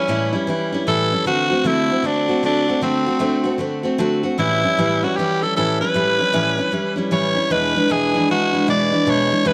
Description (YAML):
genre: rock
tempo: 154 BPM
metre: 4/4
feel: swing 64% on 8ths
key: A mixolydian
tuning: A4 = 440 Hz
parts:
  - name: breathy tenor saxophone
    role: melody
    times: 0.0-9.5 s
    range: C4 to D5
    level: -22 LUFS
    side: equal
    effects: none
  - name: picked steel-string acoustic guitar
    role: accompaniment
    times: 0.0-9.5 s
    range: E2 to F#4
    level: -21 LUFS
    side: equal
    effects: none
room: light reverb, small room ambience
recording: none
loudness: -19 LUFS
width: mono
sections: 0.0-9.5 A section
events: none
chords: 0.0 A7; 1.3 D7; 4.4 A7; 7.5 E7